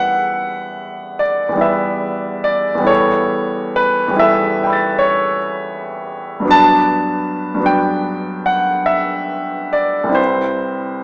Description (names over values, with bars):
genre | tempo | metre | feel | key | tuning
classical, impressionist solo piano | 43-54 BPM (dotted quarters) | 9/8 | rubato | unclear | A4 = 441 Hz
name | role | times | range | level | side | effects
clear baby grand piano | solo | 0.0-11.0 s | C2 to A6 | -14 LUFS | equal | none
room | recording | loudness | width
wet recital hall reverb, RT60 1.6 s | small speaker sound | -13 LUFS | side -30 dB against mid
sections
0.0-11.0 A section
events
none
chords
0.0 Emadd9; 2.9 A9/E; 6.5 Gmaj7; 10.2 Cmaj7